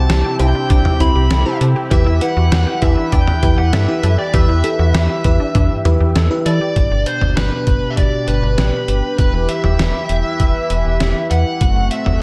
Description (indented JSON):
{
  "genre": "synth-pop",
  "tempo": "99 BPM",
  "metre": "4/4",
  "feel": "straight",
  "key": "E minor",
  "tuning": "A4 = 437 Hz",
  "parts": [
    { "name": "bluesy overdriven lead guitar", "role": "melody", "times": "0.0-12.2 s", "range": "B4 to B5", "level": "-24 LUFS", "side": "equal", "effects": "distortion, tape echo" },
    { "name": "FM electric piano with soft pad layer", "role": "accompaniment", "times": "0.0-6.5 s", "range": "E4 to C5", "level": "-25 LUFS", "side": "equal", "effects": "chorus, tremolo" },
    { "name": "chorused pulse-width pad", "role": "sustained chords", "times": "0.0-12.2 s", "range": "B2 to B4", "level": "-25 LUFS", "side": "equal", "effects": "none" },
    { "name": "resonant blip pluck", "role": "arpeggios", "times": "0.0-6.7 s", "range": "D4 to A4", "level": "-29 LUFS", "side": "equal", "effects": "chorus, tape echo" },
    { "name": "slap-like FM bass", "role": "bass", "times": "0.0-12.2 s", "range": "E1 to E3", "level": "-18 LUFS", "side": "equal", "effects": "none" },
    { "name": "trip hop sampler-style drum kit", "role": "drums", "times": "0.1-12.2 s", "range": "cowbell, hi-hat, kick drum, snare drum, toms", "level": "-20 LUFS", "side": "equal", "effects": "none" }
  ],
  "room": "moderate plate reverb, RT60 1.3 s, digital ambience",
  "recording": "dreamy mix soaked in reverb",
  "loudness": "-16 LUFS",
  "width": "mono",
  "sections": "0.0-6.8 A section; 6.8-12.2 B section",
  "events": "none",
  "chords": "0.0 C; 1.9 Em; 6.8 G; 9.2 Em; 11.6 F#dim",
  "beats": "0.09 0.70 1.31 | 1.91 2.52 3.12 3.73 | 4.34 4.94 5.55 6.15 | 6.76 7.37 7.97 8.58 | 9.19 9.79 10.40 11.00 | 11.61 12.21"
}